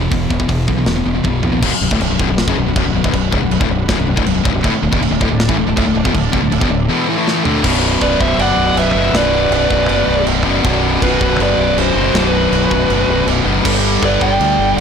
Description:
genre	heavy metal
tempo	160 BPM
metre	4/4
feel	straight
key	B minor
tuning	A4 = 441 Hz
part	distorted electric guitar	riff	0.0-14.8 s	B1 to A3	-19 LUFS	left 13 dB	overdrive
part	thick fuzz guitar	riff	0.0-14.8 s	B1 to A3	-21 LUFS	right 1 dB	distortion
part	tight distorted guitar	riff	0.0-1.6, 4.6-14.8 s	B1 to A3	-21 LUFS	right 11 dB	distortion
part	growling fingered electric bass	bass	0.0-14.8 s	B0 to D2	-20 LUFS	right 1 dB	overdrive
part	tight metal drum kit	drums	0.1-14.8 s	china cymbal, crash cymbal, hi-hat, kick drum, snare drum, toms	-20 LUFS	right 1 dB	soft clipping on kick
part	analog string pad	sustained chords	2.0-14.8 s	B2 to D5	-28 LUFS	equal	none
part	bluesy overdriven lead guitar	melody	8.0-14.8 s	B4 to G5	-17 LUFS	right 1 dB	distortion, tape echo
part	bluesy overdriven lead guitar	second line	8.0-14.8 s	F#4 to D5	-22 LUFS	right 2 dB	distortion
room	light reverb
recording	blown-out, overdriven recording, overdrive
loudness	-12 LUFS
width	side -7 dB against mid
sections	0.0-1.6 A section; 1.6-7.6 B section; 7.6-14.8 C section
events	drum fill 1.2-1.6, 7.3-7.6; half time 7.6-14.8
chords	0.0 E5; 1.6 Bm; 4.6 D5; 7.6 Bm; 13.6 G

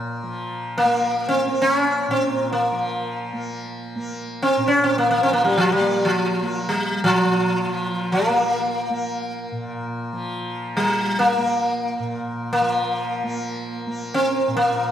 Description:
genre	indian classical, Hindustani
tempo	free time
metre	none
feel	none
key	Bb raga shivaranjani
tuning	A4 = 442 Hz
part	sitar	melody	0.0-14.9 s	F3 to Db4	-19 LUFS	equal	none
part	tanpura	drone	0.0-14.9 s	Bb2 to Bb3	-29 LUFS	equal	none
room	wet scoring stage reverb, RT60 1.6 s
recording	none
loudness	-19 LUFS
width	side -10 dB against mid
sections	0.0-14.9 A section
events	none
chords	none

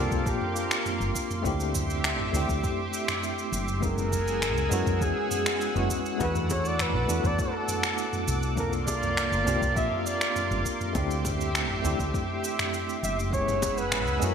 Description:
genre	sunset chillout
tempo	101 BPM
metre	4/4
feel	straight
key	unclear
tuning	A4 = 436 Hz
part	mellow flugelhorn	melody	0.0-14.3 s	G4 to E5	-31 LUFS	equal	digital delay
part	tine electric piano	accompaniment	0.0-14.3 s	G#3 to A4	-32 LUFS	moving between left 4 dB and right 3 dB	medium stereo tremolo, auto-pan, ping-pong delay
part	lush unison pad	sustained chords	0.0-14.3 s	Bb3 to E6	-33 LUFS	equal	chorus
part	woody fretless electric bass	bass	0.0-14.3 s	F#1 to F#2	-30 LUFS	equal	none
part	electronic kick drum	drums	0.1-13.7 s	none	-33 LUFS	equal	none
part	smooth R&B drum kit	drums	0.1-14.3 s	cabasa, finger snaps, toms	-31 LUFS	equal	none
part	bongos	percussion	6.2-13.7 s	none	-38 LUFS	left 7 dB	none
room	moderate lush hall reverb, RT60 1.9 s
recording	bright 1980s-style digital production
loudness	-25 LUFS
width	side -7 dB against mid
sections	0.0-14.3 A section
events	none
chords	0.0 C9sus4; 1.4 D9sus4; 3.8 F#9sus4; 6.2 E9sus4; 8.6 C9sus4; 11.0 D9sus4; 13.3 F#9sus4

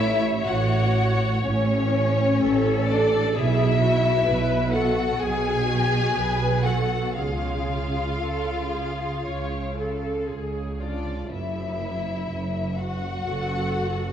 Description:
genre	classical, slow romantic movement for string orchestra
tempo	57-66 BPM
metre	4/4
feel	rubato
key	F# minor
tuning	A4 = 440 Hz
part	rich studio violin section	melody	0.0-14.1 s	C#5 to G#5	-28 LUFS	left 3 dB	none
part	rich studio violin section	second line	0.0-14.1 s	C#4 to G#4	-29 LUFS	left 4 dB	none
part	clear studio viola section	accompaniment	0.0-14.1 s	E#4 to C#5	-28 LUFS	right 1 dB	none
part	rich studio cello section	bass	0.0-14.1 s	F#2 to C#3	-29 LUFS	right 3 dB	none
part	rich studio double bass section	bass	0.0-14.1 s	F#1 to C#2	-27 LUFS	right 2 dB	none
room	wet concert hall reverb, RT60 1.9 s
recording	worn, warbling old tape, cassette tape, warbly pitch drift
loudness	-21 LUFS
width	side -9 dB against mid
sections	0.0-14.1 A section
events	none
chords	0.0 F#m/A; 3.4 F#m11/B; 7.2 C#; 11.3 F#m

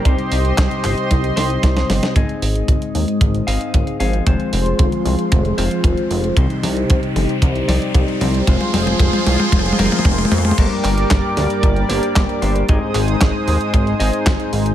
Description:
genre	italo disco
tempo	114 BPM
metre	4/4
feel	straight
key	C minor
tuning	A4 = 440 Hz
part	warm analog pad	sustained chords	0.0-14.7 s	F3 to Eb6	-21 LUFS	equal	chorus, tremolo
part	clean electric guitar	stabs	0.0-14.7 s	G2 to F5	-23 LUFS	left 3 dB	vintage 12-bit sampler grit, low-pass filter, ping-pong delay
part	chorused synth bass	bass	0.1-14.7 s	F1 to F2	-20 LUFS	equal	none
part	clean 12-bit digital drum machine	drums	0.1-14.7 s	crash cymbal, handclaps, hi-hat, snare drum, toms	-23 LUFS	equal	small room ambience
part	kick drum	drums	0.1-14.4 s	none	-16 LUFS	equal	small room ambience
part	riser	sound effects	4.4-10.6 s	none	-27 LUFS	equal	none
room	light reverb, digital ambience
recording	none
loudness	-14 LUFS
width	side -11 dB against mid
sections	0.0-2.2 A section; 2.2-10.6 B section; 10.6-14.7 C section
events	drum fill 1.4-2.2, 2.2-10.6; filter sweep on clean electric guitar 2.2-10.6; filter sweep on analog synth pad 2.2-10.6; riser 4.4-10.6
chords	0.1 Cm; 2.2 Ab; 4.3 Fm; 6.4 Cm; 8.5 Fm; 10.6 Gm; 12.7 Ab

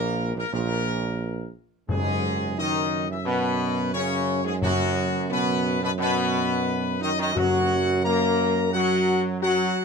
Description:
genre	classical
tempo	88 BPM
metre	4/4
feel	straight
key	unclear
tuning	A4 = 440 Hz
part	mellow trumpet section	melody	0.0-9.8 s	F#4 to A#5	-28 LUFS	left 3 dB	none
part	mellow French horn section	sustained chords	0.0-9.8 s	F#3 to A#4	-27 LUFS	left 3 dB	none
part	warm trombone section	sustained chords	0.0-9.8 s	F#2 to A#3	-29 LUFS	right 2 dB	none
part	warm tuba	bass	0.0-9.8 s	A#1 to F#2	-28 LUFS	right 5 dB	none
part	timpani	percussion	1.9-8.3 s	F#2	-31 LUFS	left 3 dB	none
room	light reverb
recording	close, detailed microphones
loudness	-22 LUFS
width	side -5 dB against mid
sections	0.0-9.8 A section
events	none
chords	0.0 N.C.; 1.9 B5/F#

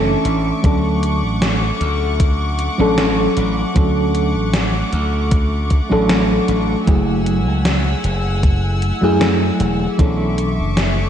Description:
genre	vaporwave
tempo	77 BPM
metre	4/4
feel	straight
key	D lydian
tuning	A4 = 436 Hz
part	mellow FM electric piano	accompaniment	0.0-11.1 s	E3 to A4	-19 LUFS	equal	tremolo, lush chorus, ping-pong delay
part	warm studio string section	sustained chords	0.0-11.1 s	A3 to E6	-24 LUFS	equal	none
part	glassy slap bass	bass	0.0-11.1 s	E1 to F#2	-19 LUFS	equal	none
part	gated 80s digital drum machine	drums	0.2-10.9 s	hi-hat, snare drum	-22 LUFS	equal	gated reverb, gated reverb snare, vintage 12-bit sampler grit
part	electronic kick drum	drums	0.6-10.2 s	none	-15 LUFS	equal	vintage 12-bit sampler grit
room	moderate lush hall reverb, RT60 2.6 s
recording	dreamy mix soaked in reverb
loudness	-14 LUFS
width	side -9 dB against mid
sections	0.0-11.1 A section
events	none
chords	0.0 Bm11 (rootless); 0.6 Dmaj7; 6.9 F#m9; 10.0 Bm11

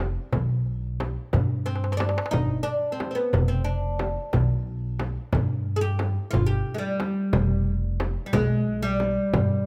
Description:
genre	Arabic maqam ensemble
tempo	60 BPM (dotted quarters)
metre	6/8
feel	straight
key	G maqam hijaz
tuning	A4 = 440 Hz
part	oud	melody	0.0-9.7 s	G3 to Ab4+25c	-30 LUFS	equal	none
part	upright bass	bass	0.0-9.7 s	F1 to G2	-29 LUFS	equal	none
part	darbuka	percussion	0.3-9.5 s	none	-31 LUFS	equal	none
part	frame drum	percussion	0.3-9.5 s	none	-32 LUFS	equal	none
room	light reverb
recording	close, detailed microphones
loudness	-25 LUFS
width	mono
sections	0.0-9.7 A section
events	drum fill 1.7-2.3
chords	none

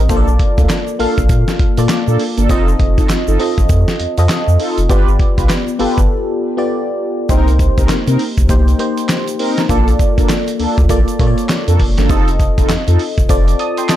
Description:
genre	R&B, new jack swing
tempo	100 BPM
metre	4/4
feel	swing 61% on 16ths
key	C dorian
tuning	A4 = 441 Hz
part	FM electric piano	accompaniment	0.0-14.0 s	Bb3 to Eb6	-18 LUFS	left 1 dB	chorus, phaser
part	round analog bass	bass	0.0-13.5 s	F1 to C3	-14 LUFS	equal	none
part	mellow synth brass	stabs	0.1-13.0 s	Bb3 to B4	-21 LUFS	right 1 dB	chorus, phaser, digital delay
part	dusty soul sampler-style drum kit	drums	0.1-14.0 s	handclaps, hi-hat, kick drum, snare drum	-15 LUFS	equal	none
part	tube shaker	percussion	0.1-14.0 s	none	-35 LUFS	right 9 dB	none
room	little or no reverb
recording	dark, warm production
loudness	-12 LUFS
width	side -12 dB against mid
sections	0.0-7.3 A section; 7.3-14.0 B section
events	break 6.1-7.3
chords	0.1 Bbmaj7; 2.5 F7; 4.9 G7; 7.3 Cm7; 9.7 Bbmaj7; 12.1 F7

